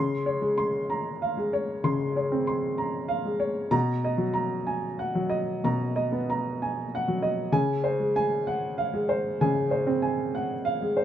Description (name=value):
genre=neoclassical minimalist piano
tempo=64 BPM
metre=4/4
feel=rubato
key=Db major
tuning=A4 = 440 Hz
part: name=warm upright piano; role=solo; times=0.0-11.0 s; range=Cb3 to C6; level=-24 LUFS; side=equal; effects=none
room=light reverb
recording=close, detailed microphones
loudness=-25 LUFS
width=side -10 dB against mid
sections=0.0-11.0 A section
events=none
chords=0.0 Dbmaj7; 3.7 Cbmaj7; 7.5 Dbmaj7